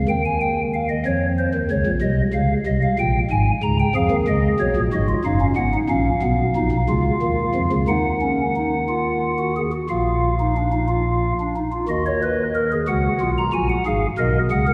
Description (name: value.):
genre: classical, baroque-style 3-part fugue for pipe organ.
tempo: 61 BPM (dotted quarters).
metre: 12/8.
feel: straight.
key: Eb minor from 4.0 s.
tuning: A4 = 439 Hz.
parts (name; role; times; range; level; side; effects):
pipe organ, stopped flute; solo; 0.0-14.7 s; Gb1 to Bb5; -20 LUFS; equal; none.
room: wet church reverb, RT60 3.1 s.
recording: none.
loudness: -20 LUFS.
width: mono.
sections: 0.0-11.9 A section; 11.9-14.7 B section.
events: none.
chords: 0.1 Eb7; 2.0 Ab/C; 4.0 Fdim; 7.9 Ebmadd9; 9.9 Bb; 11.9 Ebm; 13.9 Abm.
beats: | 0.08 1.05 2.02 2.98 | 3.96 4.93 5.91 6.90 | 7.89 8.89 9.89 10.89 | 11.89 12.88 13.86.